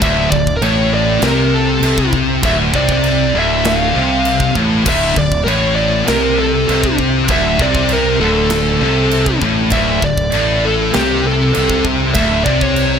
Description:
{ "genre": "heavy metal", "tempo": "99 BPM", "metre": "4/4", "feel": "straight", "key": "unclear", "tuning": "A4 = 440 Hz", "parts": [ { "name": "high-gain lead guitar", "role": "melody", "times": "0.0-13.0 s", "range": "G4 to F5", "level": "-18 LUFS", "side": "equal", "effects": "distortion, digital delay" }, { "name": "overdriven electric guitar", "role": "riff", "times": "0.0-13.0 s", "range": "D2 to C3", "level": "-20 LUFS", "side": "right 1 dB", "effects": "none" }, { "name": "scooped high-gain guitar", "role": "riff", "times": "0.0-13.0 s", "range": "D2 to C3", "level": "-18 LUFS", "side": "left 12 dB", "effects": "distortion" }, { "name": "scooped high-gain guitar", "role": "riff", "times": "0.0-13.0 s", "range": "D2 to C3", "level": "-21 LUFS", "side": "right 11 dB", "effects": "distortion" }, { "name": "fuzz fingered electric bass", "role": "bass", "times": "0.0-13.0 s", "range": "D1 to C2", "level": "-19 LUFS", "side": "equal", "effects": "overdrive" }, { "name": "tight metal drum kit", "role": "drums", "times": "0.0-12.9 s", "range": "china cymbal, crash cymbal, kick drum, snare drum", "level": "-21 LUFS", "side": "right 1 dB", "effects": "none" } ], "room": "light reverb", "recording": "none", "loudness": "-12 LUFS", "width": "side -7 dB against mid", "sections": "0.0-13.0 A section", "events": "none", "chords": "0.0 D5", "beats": "| 0.01 0.62 1.23 1.83 | 2.44 3.04 3.65 4.26 | 4.86 5.47 6.08 6.68 | 7.29 7.90 8.51 9.11 | 9.72 10.33 10.94 11.55 | 12.15 12.76" }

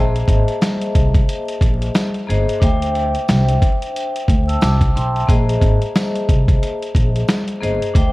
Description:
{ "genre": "hip hop, boom-bap hip-hop", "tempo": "90 BPM", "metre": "4/4", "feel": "swing 58% on 16ths", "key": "unclear", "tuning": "A4 = 440 Hz", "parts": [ { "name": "vibraphone with medium hard mallets", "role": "accompaniment", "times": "0.0-8.1 s", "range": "Bb3 to E6", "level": "-22 LUFS", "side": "left 1 dB", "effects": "high-pass filter, low-pass filter" }, { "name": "upright bass", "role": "bass", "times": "0.0-8.1 s", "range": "G1 to D2", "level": "-18 LUFS", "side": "equal", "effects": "none" }, { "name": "dusty soul sampler-style drum kit", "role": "drums", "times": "0.2-8.1 s", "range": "hi-hat, kick drum, snare drum", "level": "-17 LUFS", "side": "equal", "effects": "none" }, { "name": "tambourine", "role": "percussion", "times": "0.6-7.5 s", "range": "none", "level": "-41 LUFS", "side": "right 2 dB", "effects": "none" } ], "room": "studio reverb", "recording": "worn, warbling old tape, cassette tape, vinyl crackle, warbly pitch drift", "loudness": "-14 LUFS", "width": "side -20 dB against mid", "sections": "0.0-8.1 A section", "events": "none", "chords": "0.0 Bb9sus4; 2.6 D9sus4; 5.3 Bb9sus4", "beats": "0.62 1.28 1.95 | 2.62 3.28 3.95 4.62 | 5.28 5.95 6.62 7.28 | 7.95" }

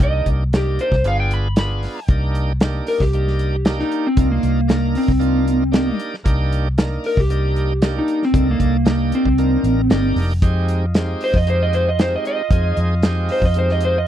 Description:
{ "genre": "straight-eighth soul blues", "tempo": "115 BPM", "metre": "4/4", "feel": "straight", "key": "C minor", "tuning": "A4 = 440 Hz", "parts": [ { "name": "electric slide guitar", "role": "melody", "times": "0.0-14.1 s", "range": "Bb3 to B5", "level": "-19 LUFS", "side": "equal", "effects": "none" }, { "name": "bright tonewheel organ", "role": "accompaniment", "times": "0.0-14.0 s", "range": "Ab3 to Bb4", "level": "-27 LUFS", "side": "right 3 dB", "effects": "overdrive, slow rotary speaker" }, { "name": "vintage muted fingered electric bass", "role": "bass", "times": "0.0-14.1 s", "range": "F1 to F2", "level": "-19 LUFS", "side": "equal", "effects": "none" }, { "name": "warm soul drum kit", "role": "drums", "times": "0.0-13.9 s", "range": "hi-hat, kick drum, snare drum", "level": "-19 LUFS", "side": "equal", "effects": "none" }, { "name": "clear horn section", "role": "sustained chords", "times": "10.4-14.1 s", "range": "F4 to F5", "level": "-32 LUFS", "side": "left 2 dB", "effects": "none" } ], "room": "little or no reverb", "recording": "dry, close 1970s-style studio recording", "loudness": "-16 LUFS", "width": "side -11 dB against mid", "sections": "0.0-2.1 A section; 2.1-14.1 B section", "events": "electric slide guitar solo 2.1-14.1", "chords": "0.0 Cm7; 1.1 G7b9; 2.1 Cm7; 10.4 Fm7", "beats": "| 0.01 0.53 1.05 1.57 | 2.09 2.61 3.13 3.66 | 4.18 4.70 5.22 5.74 | 6.26 6.78 7.30 7.82 | 8.35 8.87 9.39 9.91 | 10.43 10.95 11.47 11.99 | 12.51 13.03 13.55" }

